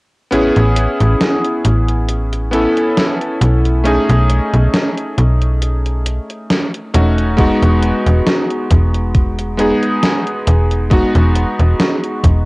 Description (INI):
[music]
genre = vaporwave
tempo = 68 BPM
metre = 4/4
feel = swing 54% on 16ths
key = E major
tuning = A4 = 440 Hz
[part]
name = bright electric grand piano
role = accompaniment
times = 0.3-12.5 s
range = G#3 to A4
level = -16 LUFS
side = equal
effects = lush chorus, vintage 12-bit sampler grit, cassette tape, tape echo
[part]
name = slap-like FM bass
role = bass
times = 0.3-12.5 s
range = E1 to B1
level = -13 LUFS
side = equal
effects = none
[part]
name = gated 80s digital drum machine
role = drums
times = 0.3-12.4 s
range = hi-hat, snare drum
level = -18 LUFS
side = equal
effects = gated reverb, gated reverb snare, overdrive
[part]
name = electronic kick drum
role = drums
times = 7.4-12.4 s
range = none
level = -14 LUFS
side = equal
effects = overdrive
[sound]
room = light reverb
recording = home recording on cassette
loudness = -12 LUFS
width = side -24 dB against mid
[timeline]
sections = 0.3-12.5 A section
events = none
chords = 0.3 Amaj9; 3.9 B13; 7.4 Emaj9